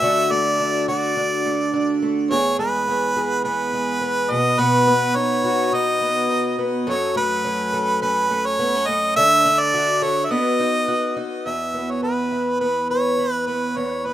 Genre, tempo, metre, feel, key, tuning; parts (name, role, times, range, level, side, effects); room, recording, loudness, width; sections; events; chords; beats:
pop; 105 BPM; 4/4; swing 55% on 16ths; E major; A4 = 439 Hz
clear harmonica; melody; 0.0-14.1 s; B4 to E5; -20 LUFS; right 1 dB; digital delay
fingerpicked twelve-string acoustic guitar; accompaniment; 0.0-14.1 s; E2 to B4; -22 LUFS; equal
light reverb; rough home demo mix; -18 LUFS; side -12 dB against mid
0.0-11.5 A section; 11.5-14.1 B section
0.0 D; 2.3 E; 4.3 B; 6.9 F#m; 9.2 D; 10.3 B; 11.5 Esus2
| 0.02 0.59 1.16 1.73 | 2.30 2.87 3.44 4.02 | 4.59 5.16 5.73 6.30 | 6.87 7.45 8.02 8.59 | 9.16 9.73 10.31 10.88 | 11.46 12.03 12.61 13.18 | 13.76